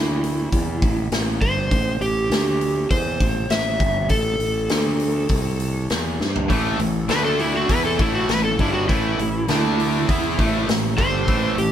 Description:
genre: blues rock power trio and southern rock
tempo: 100 BPM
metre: 4/4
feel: straight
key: A major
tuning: A4 = 439 Hz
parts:
  - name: overdriven slide guitar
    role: melody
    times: 0.0-11.7 s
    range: E4 to E5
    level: -23 LUFS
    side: right 1 dB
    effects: none
  - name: fuzz fingered electric bass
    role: bass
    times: 0.0-11.7 s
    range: G1 to G2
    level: -24 LUFS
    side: equal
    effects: overdrive
  - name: big rock drum kit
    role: drums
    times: 0.2-11.7 s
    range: hi-hat, kick drum, snare drum, toms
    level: -23 LUFS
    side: equal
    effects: none
  - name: overdriven tonewheel organ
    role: sustained chords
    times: 6.5-11.7 s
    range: A3 to E5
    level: -36 LUFS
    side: right 2 dB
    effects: none
  - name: sludgy distorted guitar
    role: riff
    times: 6.5-11.7 s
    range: G2 to E4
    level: -22 LUFS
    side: equal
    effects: overdrive
room: light reverb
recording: band playing live in one room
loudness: -18 LUFS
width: side -10 dB against mid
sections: 0.0-11.7 A section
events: drum fill 6.2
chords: 0.0 Dsus2; 0.5 A5; 2.3 Dsus4; 2.9 A5; 4.7 D5; 5.3 Am/C; 5.9 A; 7.1 D5; 7.7 A; 9.5 D5; 10.1 A

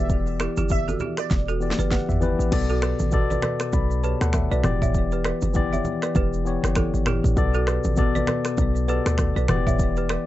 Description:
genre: afrobeats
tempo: 99 BPM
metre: 4/4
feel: swing 58% on 16ths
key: B minor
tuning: A4 = 441 Hz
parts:
  - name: glassy wavetable pluck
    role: melody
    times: 0.0-2.1 s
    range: D5 to E5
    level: -33 LUFS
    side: right 4 dB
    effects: chorus, digital delay
  - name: tine electric piano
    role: accompaniment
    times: 0.0-10.3 s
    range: B2 to B5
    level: -26 LUFS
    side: left 5 dB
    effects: none
  - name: hard-hitting 808-style bass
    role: bass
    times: 0.0-10.2 s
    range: E1 to D2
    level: -25 LUFS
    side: equal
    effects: none
  - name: afro-pop drum kit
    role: drums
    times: 0.1-10.3 s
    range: crash cymbal, finger snaps, kick drum, rim click, shaker, snare drum, toms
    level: -25 LUFS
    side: equal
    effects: none
  - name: balafon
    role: riff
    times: 0.4-10.2 s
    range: E4 to E5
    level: -31 LUFS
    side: right 8 dB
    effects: digital delay
  - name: congas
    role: percussion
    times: 0.6-9.7 s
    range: none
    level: -32 LUFS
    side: right 2 dB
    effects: none
room: little or no reverb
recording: dark, warm production, nothing above 7.9 kHz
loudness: -20 LUFS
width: side -15 dB against mid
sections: 0.0-2.5 A section; 2.5-10.3 B section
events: drum fill 1.3-2.5; tine electric piano fill 1.6-2.5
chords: 0.0 Em7; 2.5 Bm7; 4.6 Em7; 7.4 Bm7; 9.5 Em7

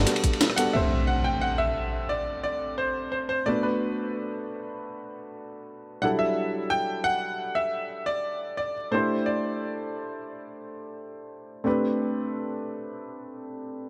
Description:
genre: liquid drum and bass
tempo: 176 BPM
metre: 4/4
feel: straight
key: A dorian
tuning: A4 = 442 Hz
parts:
  - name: clear grand piano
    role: melody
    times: 0.0-9.7 s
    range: B4 to G5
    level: -31 LUFS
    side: equal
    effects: dub echo
  - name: dark baby grand piano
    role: accompaniment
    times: 0.0-13.9 s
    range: F#3 to C5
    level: -32 LUFS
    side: equal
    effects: dub echo
  - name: breakbeat sampler-style drum kit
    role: drums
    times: 0.1-0.6 s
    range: hi-hat, rim click, snare drum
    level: -29 LUFS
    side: equal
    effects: none
  - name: crunchy breakbeat drum kit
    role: drums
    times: 0.1-0.7 s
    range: ride cymbal, snare drum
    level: -37 LUFS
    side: equal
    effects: high-pass filter on cymbals, high-pass filter on snare, high-pass filter on room
  - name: impact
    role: sound effects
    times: 0.7-2.1 s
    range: none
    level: -32 LUFS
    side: equal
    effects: none
room: light reverb, small room ambience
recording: none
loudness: -27 LUFS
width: mono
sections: 0.7-13.9 A section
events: band accent 0.4; impact 0.7-2.1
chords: 0.0 Gmaj9; 0.7 Am7; 3.5 Bm7; 6.0 Em11; 8.9 D9sus4; 11.7 Am11

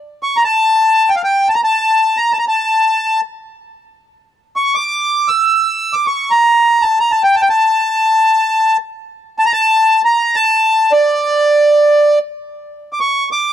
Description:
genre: Arabic maqam ensemble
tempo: free time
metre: none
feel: none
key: unclear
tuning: A4 = 441 Hz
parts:
  - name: accordion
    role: solo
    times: 0.2-13.5 s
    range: D5 to E6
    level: -11 LUFS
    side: equal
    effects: none
room: small room ambience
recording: dry, close 1970s-style studio recording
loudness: -11 LUFS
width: side -10 dB against mid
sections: 0.0-12.5 A section; 12.5-13.5 A section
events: none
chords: none

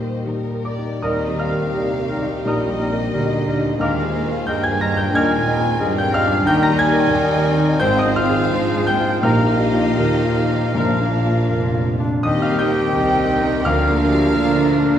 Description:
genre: classical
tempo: 76-91 BPM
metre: 4/4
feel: rubato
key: Eb major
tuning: A4 = 436 Hz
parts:
  - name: clear concert grand piano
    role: melody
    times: 0.0-15.0 s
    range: D2 to Bb6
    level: -20 LUFS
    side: left 2 dB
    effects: none
  - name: rich studio violin section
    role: melody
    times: 0.0-15.0 s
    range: D5 to Bb5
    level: -31 LUFS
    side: left 4 dB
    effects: none
  - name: warm studio violin section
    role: second line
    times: 0.0-15.0 s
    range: D4 to F5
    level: -29 LUFS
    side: left 3 dB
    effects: none
  - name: warm studio viola section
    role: accompaniment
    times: 0.0-15.0 s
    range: G3 to G4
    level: -28 LUFS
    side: equal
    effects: none
  - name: warm studio cello section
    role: bass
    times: 0.0-15.0 s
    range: F2 to Eb4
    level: -28 LUFS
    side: right 3 dB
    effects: none
  - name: mellow hollow concert flute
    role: second line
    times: 0.6-15.0 s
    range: D5 to Bb5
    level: -29 LUFS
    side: equal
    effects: none
  - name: mellow clarinet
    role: second line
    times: 1.0-15.0 s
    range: C4 to Eb4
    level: -28 LUFS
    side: right 1 dB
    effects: none
  - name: warm oboe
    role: second line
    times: 1.0-15.0 s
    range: G4 to C5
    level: -30 LUFS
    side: right 2 dB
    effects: none
  - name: warm bassoon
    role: accompaniment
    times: 1.0-15.0 s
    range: Eb3 to Ab3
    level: -28 LUFS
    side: right 1 dB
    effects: none
  - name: mellow French horn section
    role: sustained chords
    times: 1.0-15.0 s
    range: Eb3 to Eb4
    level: -27 LUFS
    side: left 1 dB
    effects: none
  - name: warm trumpet section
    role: stabs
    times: 1.0-15.0 s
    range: G4 to C5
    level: -27 LUFS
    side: equal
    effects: none
  - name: warm studio double bass section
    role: bass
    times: 1.0-15.0 s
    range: F1 to Eb3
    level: -28 LUFS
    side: right 2 dB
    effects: none
  - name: warm tuba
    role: bass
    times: 1.0-15.0 s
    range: F1 to Eb3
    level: -26 LUFS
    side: right 2 dB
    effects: none
  - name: timpani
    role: percussion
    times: 10.8-11.8 s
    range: Bb2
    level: -30 LUFS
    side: equal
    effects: none
room: wet recital hall reverb, RT60 1.4 s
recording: heard from further back in the room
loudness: -16 LUFS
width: side -10 dB against mid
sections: 0.0-1.0 A section; 1.0-15.0 A section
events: none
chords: 0.0 Eb; 3.8 Bb7/Eb; 6.5 Eb; 7.8 Fm/Ab; 9.2 Bbsus4; 10.8 Bb; 12.2 Cm/Eb; 13.7 Bb/D

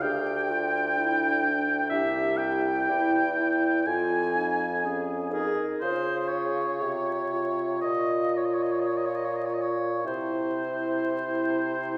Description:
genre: classical, slow romantic movement for wind quintet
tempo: 48-64 BPM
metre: 4/4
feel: rubato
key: unclear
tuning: A4 = 440 Hz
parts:
  - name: mellow hollow silver concert flute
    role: melody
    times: 0.0-12.0 s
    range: Ab4 to Ab5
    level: -35 LUFS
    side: equal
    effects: none
  - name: warm oboe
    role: second line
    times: 0.0-12.0 s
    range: Ab4 to Ab5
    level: -31 LUFS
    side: equal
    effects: none
  - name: mellow French horn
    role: accompaniment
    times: 0.0-12.0 s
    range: Db4 to F4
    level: -34 LUFS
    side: equal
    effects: none
  - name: mellow clarinet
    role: accompaniment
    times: 0.0-12.0 s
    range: D4 to Bb4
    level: -35 LUFS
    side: equal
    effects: none
  - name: warm bassoon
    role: bass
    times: 0.0-12.0 s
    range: C2 to Db3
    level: -35 LUFS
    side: equal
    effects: none
room: wet concert hall reverb, RT60 1.9 s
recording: heard from further back in the room, vinyl crackle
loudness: -27 LUFS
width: mono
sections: 0.0-12.0 A section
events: none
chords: 0.0 G5/D; 1.9 C; 3.9 Fm; 5.8 Db; 7.8 Bbmadd11; 10.1 C

